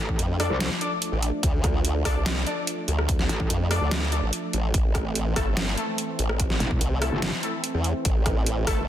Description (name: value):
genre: heavy wobble dubstep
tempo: 145 BPM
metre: 4/4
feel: half-time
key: D minor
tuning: A4 = 440 Hz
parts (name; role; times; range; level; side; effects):
- supersaw pad; sustained chords; 0.0-8.9 s; E3 to D4; -33 LUFS; right 1 dB; phaser, sidechain pumping, low-pass filter
- metallic wobble bass; bass; 0.0-0.7, 3.3-3.5, 6.6-7.3 s; E1 to C2; -27 LUFS; equal; distortion, chorus, overdrive
- electronic kick drum; drums; 0.1-8.8 s; none; -26 LUFS; equal; overdrive
- formant-sweep wobble bass; bass; 0.2-8.9 s; G1 to F2; -25 LUFS; equal; chorus, overdrive
- dubstep drum kit; drums; 0.2-8.8 s; hi-hat, rim click, snare drum; -29 LUFS; equal; overdrive
- orchestra-hit-like synth stab; stabs; 0.4-8.8 s; A3 to D5; -32 LUFS; left 2 dB; built-in reverb, digital delay
room: light reverb, digital ambience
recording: dense, heavily limited modern master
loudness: -22 LUFS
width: side -11 dB against mid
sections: 0.0-8.9 A section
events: none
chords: 0.0 Dm; 4.7 Am